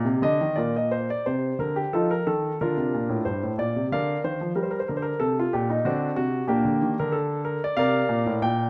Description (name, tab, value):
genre	classical, baroque-style suite movement for grand piano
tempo	92 BPM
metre	3/4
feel	rubato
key	Bb major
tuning	A4 = 440 Hz
part	warm grand piano	solo	0.0-8.7 s	G2 to G5	-25 LUFS	equal	none
room	wet stone room reverb, RT60 1.4 s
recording	none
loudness	-25 LUFS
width	mono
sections	0.6-8.7 A section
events	none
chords	0.0 Eb5; 0.6 Bb; 1.9 F7; 2.6 Bb; 4.5 Gm; 5.8 D7; 6.5 Bbmaj13